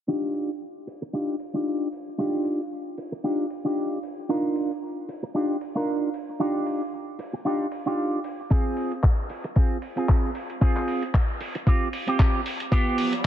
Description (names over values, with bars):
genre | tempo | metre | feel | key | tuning
nu-disco, nu disco | 114 BPM | 4/4 | swing 56% on 16ths | Eb major | A4 = 441 Hz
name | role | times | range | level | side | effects
electric guitar with an envelope filter | riff | 0.1-13.1 s | B3 to Bb4 | -26 LUFS | right 1 dB | analog chorus, low-pass filter, dub echo
dusty soul sampler-style drum kit | drums | 0.3-13.2 s | handclaps, hi-hat | -35 LUFS | equal | none
electronic kick drum | drums | 8.5-12.8 s | none | -20 LUFS | left 1 dB | none
riser | sound effects | 12.9-13.3 s | none | -34 LUFS | equal | none
room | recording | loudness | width
moderate plate reverb, RT60 2.0 s, digital ambience | dense, heavily limited modern master, low-pass filter | -24 LUFS | side -11 dB against mid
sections
0.1-13.3 A section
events
filter sweep on clean electric guitar 0.1-13.3; filter sweep 0.1-13.3; riser 12.9-13.3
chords
0.1 Ebmaj9; 8.5 Ab6; 12.7 G7